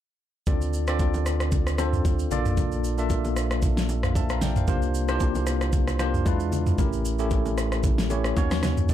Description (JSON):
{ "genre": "amapiano", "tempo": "114 BPM", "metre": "4/4", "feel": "swing 55% on 16ths", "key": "D minor", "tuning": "A4 = 444 Hz", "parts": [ { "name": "bell-like tine electric piano", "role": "accompaniment", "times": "0.5-8.9 s", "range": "G#3 to Bb5", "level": "-28 LUFS", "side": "left 1 dB", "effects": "medium stereo tremolo" }, { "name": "sub bass with octave", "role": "bass", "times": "0.5-8.9 s", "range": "A1 to E2", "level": "-27 LUFS", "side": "equal", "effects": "none" }, { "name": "smooth R&B drum kit", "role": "drums", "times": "0.5-8.9 s", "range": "kick drum, rim click, shaker, snare drum, toms", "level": "-26 LUFS", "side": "equal", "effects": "none" }, { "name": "congas and bongos", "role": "percussion", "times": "0.5-8.9 s", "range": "none", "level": "-35 LUFS", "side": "right 2 dB", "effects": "none" } ], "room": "little or no reverb", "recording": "dark, warm production", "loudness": "-22 LUFS", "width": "side -11 dB against mid", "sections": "0.5-8.9 A section", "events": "none", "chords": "0.5 Dm7; 2.3 Bbmaj7; 4.7 C9sus4; 6.3 E7b9; 6.8 A7b9; 8.4 Ebm7" }